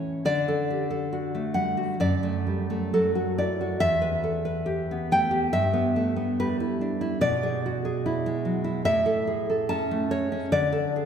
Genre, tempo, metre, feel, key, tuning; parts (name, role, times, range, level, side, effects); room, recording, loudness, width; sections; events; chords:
romantic piece for solo classical guitar; 62-74 BPM; 2/4; rubato; D major, A major from 7.2 s; A4 = 440 Hz
nylon-string guitar; solo; 0.0-11.1 s; E2 to A5; -23 LUFS; equal
wet church reverb, RT60 2.9 s; recorded in a church or concert hall; -23 LUFS; side -7 dB against mid
0.2-11.1 A section
0.2 D; 2.0 D/F#; 3.8 Em; 5.5 Em/G; 7.2 E7/B; 8.9 A; 10.5 D5